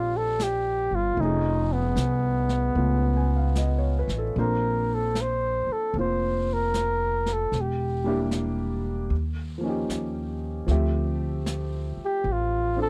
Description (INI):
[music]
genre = jazz ballad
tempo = 76 BPM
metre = 4/4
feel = swing 66% on 8ths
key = unclear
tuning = A4 = 440 Hz
[part]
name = mellow flugelhorn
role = melody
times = 0.0-12.9 s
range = B3 to C5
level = -28 LUFS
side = equal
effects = none
[part]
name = warm concert grand piano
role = accompaniment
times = 0.0-12.9 s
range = F3 to G#5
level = -33 LUFS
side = equal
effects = none
[part]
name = upright bass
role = bass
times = 0.0-12.9 s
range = E1 to Eb2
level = -29 LUFS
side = equal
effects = none
[part]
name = vintage brush drum kit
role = drums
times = 0.4-12.9 s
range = brushed snare drum, hi-hat, snare drum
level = -38 LUFS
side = equal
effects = none
[sound]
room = little or no reverb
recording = dry, close 1970s-style studio recording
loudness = -26 LUFS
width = mono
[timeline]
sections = 0.0-12.9 A section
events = none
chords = 0.0 Gm9; 1.2 F7alt; 4.3 Bbadd9; 7.5 Em7b5; 9.1 Eb9; 10.7 Dm11